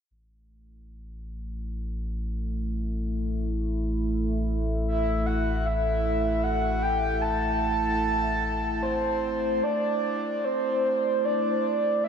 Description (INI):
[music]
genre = ambient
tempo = free time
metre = none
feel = none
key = A dorian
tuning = A4 = 440 Hz
[part]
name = warm sub bass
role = bass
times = 0.1-9.6 s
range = A1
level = -30 LUFS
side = equal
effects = none
[part]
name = analog drone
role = drone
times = 1.6-12.1 s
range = A3 to E4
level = -31 LUFS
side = right 1 dB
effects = chorus
[part]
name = breathy flute-like synth lead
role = melody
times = 4.9-12.1 s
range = C5 to A5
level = -25 LUFS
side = equal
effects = lush chorus
[sound]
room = wet huge ambient reverb, RT60 8.7 s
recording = dark, warm production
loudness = -24 LUFS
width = side -7 dB against mid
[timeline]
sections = 0.1-9.6 A section; 9.6-12.1 B section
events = none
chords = 0.1 A5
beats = free time